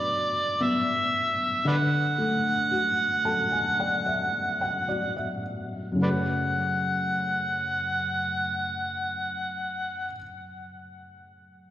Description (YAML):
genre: pop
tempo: 53-58 BPM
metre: 4/4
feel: straight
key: F# minor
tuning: A4 = 442 Hz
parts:
  - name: overdriven harmonica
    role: melody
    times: 0.0-10.1 s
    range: B4 to F#5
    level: -26 LUFS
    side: right 1 dB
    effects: slapback echo, tape echo
  - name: felt-muted upright piano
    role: accompaniment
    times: 0.0-11.7 s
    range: F#2 to A5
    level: -29 LUFS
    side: left 1 dB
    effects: slapback echo
room: light reverb, small room ambience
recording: live gig heard through the venue's PA, recital hall reverb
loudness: -24 LUFS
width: side -12 dB against mid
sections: 0.0-6.0 A section; 6.0-10.6 B section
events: slowing down 0.0-6.0; felt piano fill 2.7-6.0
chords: 0.0 Bm; 1.7 D; 6.0 F#madd9